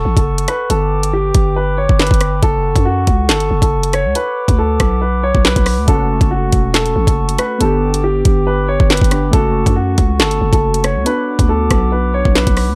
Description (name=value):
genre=hip hop, drill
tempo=139 BPM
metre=4/4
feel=half-time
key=F# phrygian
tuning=A4 = 440 Hz
part: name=dark baby grand piano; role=melody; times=0.0-12.8 s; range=F#4 to C#5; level=-21 LUFS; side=equal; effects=low-pass filter, delay
part: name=glass harmonica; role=sustained chords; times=0.0-12.8 s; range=A4 to D6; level=-28 LUFS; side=equal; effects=none
part: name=growling 808-style bass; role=bass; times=0.0-12.8 s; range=E1 to F#2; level=-19 LUFS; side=equal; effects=none
part: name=impact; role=sound effects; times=0.0-0.7 s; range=none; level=barely audible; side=none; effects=none
part: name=drill drum kit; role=drums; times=0.2-12.7 s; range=handclaps, hi-hat, kick drum, rim click, snare drum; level=-16 LUFS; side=equal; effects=overdrive
part: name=warbly lo-fi synth keys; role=accompaniment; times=5.9-12.8 s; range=A3 to G4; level=-24 LUFS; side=equal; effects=chorus, low-pass filter
room=little or no reverb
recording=none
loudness=-14 LUFS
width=mono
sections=0.0-12.8 A section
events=impact 0.0-0.7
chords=0.0 F#m; 0.7 G; 2.4 F#m; 4.2 Bm; 5.9 F#m; 7.6 G; 9.3 F#m; 11.1 Bm